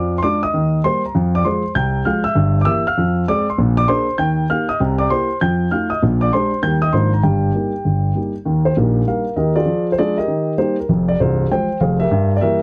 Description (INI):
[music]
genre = jazz, stride piano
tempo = 197 BPM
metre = 4/4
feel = swing 62% on 8ths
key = Eb major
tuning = A4 = 443 Hz
[part]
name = dark grand piano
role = solo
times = 0.0-12.6 s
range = C1 to G6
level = -18 LUFS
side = equal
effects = none
[sound]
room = light reverb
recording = none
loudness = -18 LUFS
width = mono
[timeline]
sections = 0.0-8.5 A section; 8.5-12.6 A section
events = none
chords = 0.0 Ddim/F; 0.5 Eb; 1.1 Fm; 2.4 Edim/G; 3.0 Fm; 3.6 Bb9; 4.2 Eb; 4.8 C7; 5.4 F7; 6.0 Bb13; 6.6 Eb; 6.9 Bb7/Ab; 7.2 Eb/G; 8.5 Eb; 9.7 Ddim/F; 10.3 Eb; 10.9 Fm; 12.1 Edim/G